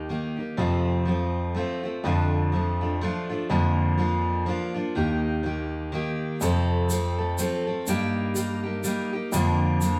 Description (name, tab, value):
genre	acoustic folk duo or small band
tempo	124 BPM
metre	3/4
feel	swing 58% on 8ths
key	F mixolydian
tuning	A4 = 440 Hz
part	picked steel-string acoustic guitar	accompaniment	0.0-10.0 s	F2 to A4	-28 LUFS	equal	none
part	dark baby grand piano	bass	0.0-10.0 s	Eb2 to G2	-29 LUFS	equal	none
part	egg shaker	percussion	6.4-9.9 s	none	-38 LUFS	equal	none
room	moderate large studio reverb, RT60 1.1 s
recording	band playing live in one room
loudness	-26 LUFS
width	mono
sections	0.6-10.0 A section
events	none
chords	0.0 Eb; 0.6 F; 2.0 Dm/F; 3.5 Bb/F; 5.0 Eb; 6.4 F; 7.9 Eb/G; 9.3 Bb/F